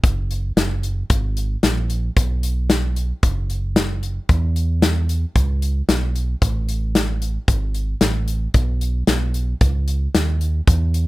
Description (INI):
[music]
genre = honky-tonk and classic country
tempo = 113 BPM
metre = 4/4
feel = straight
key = unclear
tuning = A4 = 437 Hz
[part]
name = deep dub fingered electric bass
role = bass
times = 0.0-11.1 s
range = F#1 to E2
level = -20 LUFS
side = right 1 dB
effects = none
[part]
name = natural country drum kit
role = drums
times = 0.0-11.1 s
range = hi-hat, kick drum, snare drum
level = -19 LUFS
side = left 1 dB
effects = none
[sound]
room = little or no reverb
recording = none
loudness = -18 LUFS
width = side -19 dB against mid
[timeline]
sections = 0.0-11.1 A section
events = none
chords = none